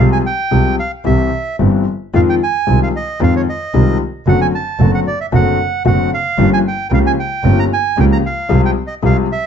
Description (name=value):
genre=tango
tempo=113 BPM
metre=4/4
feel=rubato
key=F minor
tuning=A4 = 436 Hz
part: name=bandoneon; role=melody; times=0.0-9.5 s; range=Db5 to Bb5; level=-19 LUFS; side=right 5 dB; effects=plate reverb
part: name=clear concert grand piano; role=accompaniment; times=0.0-9.3 s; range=G1 to Ab4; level=-15 LUFS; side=left 4 dB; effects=none
part: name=dark double bass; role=bass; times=0.0-9.3 s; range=F#1 to F2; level=-15 LUFS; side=right 2 dB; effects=none
room=light reverb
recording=dark, warm production, nothing above 7.7 kHz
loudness=-12 LUFS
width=side -8 dB against mid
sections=0.0-9.5 A section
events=none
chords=0.0 Fm/C; 1.1 C; 2.1 Fm7; 4.3 D7/F#; 6.4 Gm7b5; 8.5 Fm/C